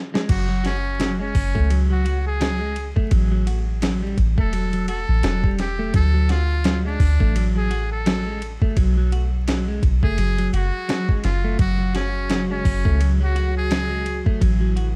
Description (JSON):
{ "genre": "trip hop", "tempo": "85 BPM", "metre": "4/4", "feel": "swing 57% on 16ths", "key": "F# minor", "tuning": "A4 = 440 Hz", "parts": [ { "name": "clean electric guitar", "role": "arpeggios", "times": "0.1-14.9 s", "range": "F#3 to F#4", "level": "-30 LUFS", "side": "equal", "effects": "tape echo" }, { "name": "dusty soul sampler-style drum kit", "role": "drums", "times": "0.2-15.0 s", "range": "crash cymbal, hi-hat, kick drum, ride cymbal, snare drum", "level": "-25 LUFS", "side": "equal", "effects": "none" }, { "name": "trumpet with metal mute", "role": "melody", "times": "0.3-14.2 s", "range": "C#4 to A4", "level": "-31 LUFS", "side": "equal", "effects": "tape echo" }, { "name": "soft 808-style bass", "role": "bass", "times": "0.3-15.0 s", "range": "E1 to D2", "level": "-23 LUFS", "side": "equal", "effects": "none" }, { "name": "warbly tape-like pad", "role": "sustained chords", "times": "12.1-15.0 s", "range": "C3 to F#4", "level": "-33 LUFS", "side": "equal", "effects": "chorus, built-in reverb, vintage 12-bit sampler grit" } ], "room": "digital ambience", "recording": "dark, warm production, vinyl crackle", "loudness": "-21 LUFS", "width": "mono", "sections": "0.3-15.0 A section", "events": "break 0.0; drum fill 0.0", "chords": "0.3 F#5; 3.1 A5; 5.9 D; 8.8 B5; 11.6 F#5; 14.4 Am", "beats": "| 0.29 1.00 1.71 2.41 | 3.12 3.82 4.53 5.24 | 5.94 6.65 7.35 8.06 | 8.77 9.47 10.18 10.88 | 11.59 12.29 13.00 13.71 | 14.41" }